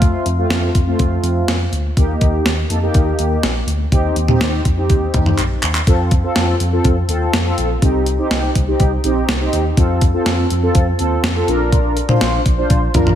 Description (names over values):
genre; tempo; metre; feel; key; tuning
synth-pop; 123 BPM; 4/4; straight; unclear; A4 = 440 Hz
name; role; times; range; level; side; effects
mellow synth brass; accompaniment; 0.0-13.2 s; A3 to C5; -19 LUFS; equal; chorus
mellow tine electric piano; bass; 0.0-13.1 s; Bb1 to F2; -19 LUFS; equal; none
clean 12-bit digital drum machine; drums; 0.0-13.2 s; handclaps, hi-hat, kick drum, snare drum, toms; -17 LUFS; equal; none
room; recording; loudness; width
moderate lush hall reverb, RT60 1.9 s, digital ambience; big arena sound; -14 LUFS; side -10 dB against mid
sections
0.0-5.9 A section; 5.9-13.2 B section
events
drum fill 5.4-5.9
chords
0.0 F; 2.0 Eb; 3.9 Cm/Eb; 5.9 F; 7.8 Cm; 9.8 F; 11.5 Bb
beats
| 0.02 0.51 0.99 1.48 | 1.97 2.46 2.94 3.43 | 3.92 4.41 4.90 5.38 | 5.87 6.36 6.85 7.34 | 7.82 8.31 8.80 9.29 | 9.78 10.26 10.75 11.24 | 11.73 12.21 12.70